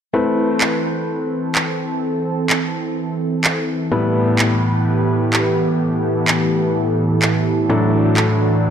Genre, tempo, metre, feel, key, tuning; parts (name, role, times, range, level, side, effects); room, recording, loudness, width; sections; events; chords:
progressive house; 127 BPM; 4/4; straight; A dorian; A4 = 436 Hz
warm analog pad; sustained chords; 0.1-8.7 s; A2 to B4; -18 LUFS; right 1 dB; wide subtle chorus
clear baby grand piano; stabs; 0.1-8.7 s; A2 to B4; -19 LUFS; left 2 dB; vintage 12-bit sampler grit, low-pass filter, ping-pong delay
electronic handclaps; drums; 0.6-8.3 s; -20 LUFS; right 1 dB
light reverb; dark, warm production; -16 LUFS; side -8 dB against mid
0.1-8.7 A section
0.1 Amadd9; 3.9 Em/A; 7.7 Dadd9/A